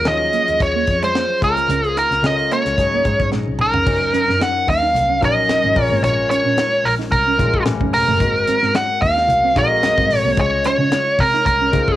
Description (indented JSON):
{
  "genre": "polished 1980s jazz-funk pop",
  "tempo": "110 BPM",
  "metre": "4/4",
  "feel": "swing 54% on 16ths",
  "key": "Db major",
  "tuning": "A4 = 440 Hz",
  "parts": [
    { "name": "nasal lead guitar with a parked wah", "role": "melody", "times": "0.0-12.0 s", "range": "Bb4 to Gb5", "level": "-16 LUFS", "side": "right 1 dB", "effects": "overdrive, cassette tape" },
    { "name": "barky tine electric piano", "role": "accompaniment", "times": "0.0-12.0 s", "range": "F3 to Db5", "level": "-25 LUFS", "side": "left 8 dB", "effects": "overdrive, lush chorus, cassette tape" },
    { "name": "warm double bass", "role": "bass", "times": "0.0-11.9 s", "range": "E1 to Eb3", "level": "-23 LUFS", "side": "equal", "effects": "none" },
    { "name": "tight funk drum kit", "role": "drums", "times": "0.1-12.0 s", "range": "crash cymbal, hi-hat, kick drum, snare drum, toms", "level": "-23 LUFS", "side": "equal", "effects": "none" },
    { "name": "mellow electric guitar", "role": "riff", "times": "0.3-11.9 s", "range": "Ab3 to Eb4", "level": "-25 LUFS", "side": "right 8 dB", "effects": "ensemble chorus, cassette tape" },
    { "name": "congas", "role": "percussion", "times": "3.9-11.9 s", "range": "none", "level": "-32 LUFS", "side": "left 9 dB", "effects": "none" }
  ],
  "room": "moderate booth ambience, RT60 0.2 s",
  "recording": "home recording on cassette",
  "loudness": "-14 LUFS",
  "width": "side -14 dB against mid",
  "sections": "0.0-3.9 A section; 3.9-12.0 B section",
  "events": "drum fill 3.3-3.9",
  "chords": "0.0 Ebm11; 1.4 Db6; 2.8 Ab7sus4; 3.9 Gb6; 5.8 Bbm7; 7.7 A9; 8.2 Ab9; 10.4 Dbmaj7"
}